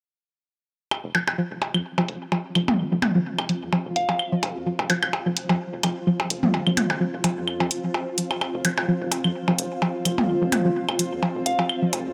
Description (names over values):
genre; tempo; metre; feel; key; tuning
minimal techno; 128 BPM; 4/4; swing 55% on 16ths; unclear; A4 = 443 Hz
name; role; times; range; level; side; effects
electronic claves, percussion blips and toms; percussion; 0.9-12.0 s; none; -27 LUFS; equal; dub echo
granular cloud pad; texture; 1.8-12.1 s; C4 to F5; -32 LUFS; equal; built-in reverb
rubbery square bass; bass; 1.0-12.1 s; F1 to F2; -40 LUFS; equal; high-pass filter
string-like resonator pluck; riff; 1.1-11.8 s; F3; -27 LUFS; equal; chorus, phaser, cassette tape, tape echo
electronic hi-hat; drums; 1.1-12.0 s; none; -29 LUFS; equal; low-pass filter on hats, low-pass filter on room
soft synth bell; melody; 4.0-4.4, 11.5-11.9 s; F5; -30 LUFS; equal; chorus, dub echo
room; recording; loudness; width
moderate lush hall reverb, RT60 2.0 s, digital ambience; none; -24 LUFS; mono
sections
0.9-12.1 A section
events
none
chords
0.9 F5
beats
| 0.91 1.38 1.85 2.32 | 2.79 3.26 3.73 4.19 | 4.66 5.13 5.60 6.07 | 6.54 7.01 7.48 7.94 | 8.41 8.88 9.35 9.82 | 10.29 10.76 11.23 11.69